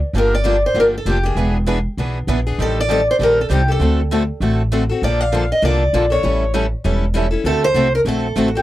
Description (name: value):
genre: acoustic string swing (jazz manouche)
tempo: 197 BPM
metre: 4/4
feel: swing 59% on 8ths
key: G minor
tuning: A4 = 440 Hz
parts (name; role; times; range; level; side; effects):
- picked steel-string acoustic guitar; accompaniment; 0.1-8.6 s; D3 to A4; -22 LUFS; left 5 dB; none
- picked swing-style acoustic guitar; accompaniment; 0.1-8.5 s; D3 to B4; -25 LUFS; right 7 dB; none
- upright bass; bass; 0.1-8.6 s; E1 to D2; -19 LUFS; equal; none
- picked acoustic archtop guitar; melody; 0.2-8.6 s; F#4 to F5; -18 LUFS; equal; none
room: little or no reverb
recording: dry, close 1970s-style studio recording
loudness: -15 LUFS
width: side -15 dB against mid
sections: 0.1-8.6 A section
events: none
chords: 0.1 Gm7; 1.4 E7; 2.6 Am7b5; 3.8 D7; 5.0 Bbmaj7; 6.2 A7; 7.5 D7